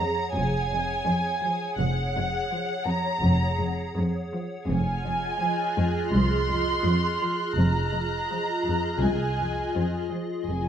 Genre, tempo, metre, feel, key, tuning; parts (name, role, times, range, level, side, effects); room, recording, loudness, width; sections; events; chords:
cinematic, suspense film score; 83 BPM; 4/4; straight; F phrygian; A4 = 440 Hz
muted studio violin section; melody; 0.0-10.7 s; Gb5 to C6; -28 LUFS; right 1 dB
evolving wavetable pad; sustained chords; 0.0-10.7 s; F4 to Gb5; -31 LUFS; equal; ensemble chorus, built-in reverb, phaser
muted studio cello section; riff; 0.0-10.7 s; F2 to F3; -30 LUFS; equal
muted studio cello section; bass; 0.3-10.7 s; C2 to F2; -28 LUFS; equal
muted studio double bass section; bass; 0.3-10.7 s; F1 to C2; -28 LUFS; equal
muted studio violin section; texture; 4.7-10.1 s; F6 to Gb6; -38 LUFS; left 3 dB
light reverb; close, detailed microphones; -23 LUFS; side -9 dB against mid
0.0-10.7 A section
0.0 Gbadd9/F; 4.7 Fm7